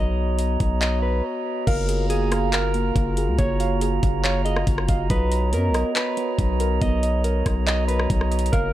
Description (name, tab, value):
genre	hip hop, atmospheric cloud-rap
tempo	140 BPM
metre	4/4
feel	half-time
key	unclear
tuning	A4 = 440 Hz
part	mellow electric guitar	melody	0.0-8.7 s	G#4 to D#5	-29 LUFS	left 1 dB	digital delay
part	glass harmonica	sustained chords	0.0-8.7 s	B3 to A#5	-27 LUFS	right 1 dB	none
part	long sustained 808-style bass	bass	0.0-8.7 s	F#1 to F#2	-23 LUFS	equal	none
part	smooth R&B drum kit	drums	0.4-8.6 s	crash cymbal, handclaps, hi-hat, kick drum, rim click	-24 LUFS	equal	vintage 12-bit sampler grit
part	muted felt-like synth keys	arpeggios	1.7-8.7 s	A#3 to A#5	-29 LUFS	right 4 dB	chorus, digital delay
room	little or no reverb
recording	none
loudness	-20 LUFS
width	side -13 dB against mid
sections	0.0-1.7 A section; 1.7-8.7 B section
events	break 1.2-1.7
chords	0.0 Bmaj7; 1.7 F#maj9; 5.1 Bmaj7